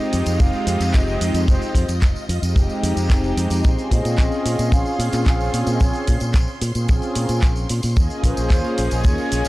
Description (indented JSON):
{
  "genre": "nu-disco, nu disco",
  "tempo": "111 BPM",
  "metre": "4/4",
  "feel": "straight",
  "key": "unclear",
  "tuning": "A4 = 443 Hz",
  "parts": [
    { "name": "breathy hollow jazz flute", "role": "melody", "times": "0.0-9.5 s", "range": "C5 to F5", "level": "-29 LUFS", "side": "right 1 dB", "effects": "analog delay" },
    { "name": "warm analog pad", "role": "accompaniment", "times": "0.0-9.5 s", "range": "Ab3 to Ab4", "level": "-24 LUFS", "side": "equal", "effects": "chorus" },
    { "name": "string machine, full ensemble", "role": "sustained chords", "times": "0.0-9.5 s", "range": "F4 to C6", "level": "-33 LUFS", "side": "equal", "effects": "ensemble chorus, sidechain pumping" },
    { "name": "fingered electric bass with an envelope filter", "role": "bass", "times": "0.1-9.5 s", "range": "F1 to Bb2", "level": "-22 LUFS", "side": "equal", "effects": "tube saturation" },
    { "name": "pop drum kit", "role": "drums", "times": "0.1-9.5 s", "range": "handclaps, hi-hat, shaker", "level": "-31 LUFS", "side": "right 1 dB", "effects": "none" },
    { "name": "tambourine", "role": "percussion", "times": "0.3-9.5 s", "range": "none", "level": "-36 LUFS", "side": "left 1 dB", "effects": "none" },
    { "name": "kick drum", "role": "drums", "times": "0.4-9.2 s", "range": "none", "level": "-17 LUFS", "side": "equal", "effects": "none" }
  ],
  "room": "small room reverb",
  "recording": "dry, gritty hardware recording, cassette tape",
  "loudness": "-17 LUFS",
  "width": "side -18 dB against mid",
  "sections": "0.0-9.5 A section",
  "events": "none",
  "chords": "0.0 Fm7; 3.6 Bbm9; 8.0 Eb7sus4"
}